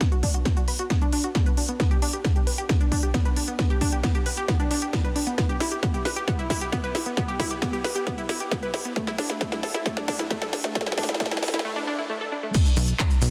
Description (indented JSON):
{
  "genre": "uplifting trance",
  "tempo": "134 BPM",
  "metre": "4/4",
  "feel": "straight",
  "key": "unclear",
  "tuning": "A4 = 440 Hz",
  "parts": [
    { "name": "unison pluck", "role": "arpeggios", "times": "0.0-12.5 s", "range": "A3 to B4", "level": "-31 LUFS", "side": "equal", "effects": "sidechain pumping, digital delay" },
    { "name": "electronic kick drum", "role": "drums", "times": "0.0-13.1 s", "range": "none", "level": "-27 LUFS", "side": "equal", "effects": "none" },
    { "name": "techno drum kit", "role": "drums", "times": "0.0-13.3 s", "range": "crash cymbal, handclaps, hi-hat, shaker, snare drum", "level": "-31 LUFS", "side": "equal", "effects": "high-pass filter on snare, high-pass filter on hats, high-pass filter on cymbals, high-pass filter on perc, high-pass filter on room" },
    { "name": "plucky analog bass", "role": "bass", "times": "12.8-13.3 s", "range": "B1", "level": "-25 LUFS", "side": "equal", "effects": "sidechain pumping" }
  ],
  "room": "light reverb, digital ambience",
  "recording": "dense, heavily limited modern master, high-pass filter",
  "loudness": "-25 LUFS",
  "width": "mono",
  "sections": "0.0-12.5 A section",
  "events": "build-up 0.0-12.5; drum fill 0.0-11.7; filter sweep 0.0-12.5",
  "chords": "0.0 Bm; 1.8 G; 5.4 Em; 9.0 Asus4; 12.5 N.C.",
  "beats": "| 0.01 0.46 0.90 1.35 | 1.80 2.25 2.69 3.14 | 3.59 4.04 4.49 4.93 | 5.38 5.83 6.28 6.72 | 7.17 7.62 8.07 8.52 | 8.96 9.41 9.86 10.31 | 10.75 11.20 11.65 12.10 | 12.54 12.99"
}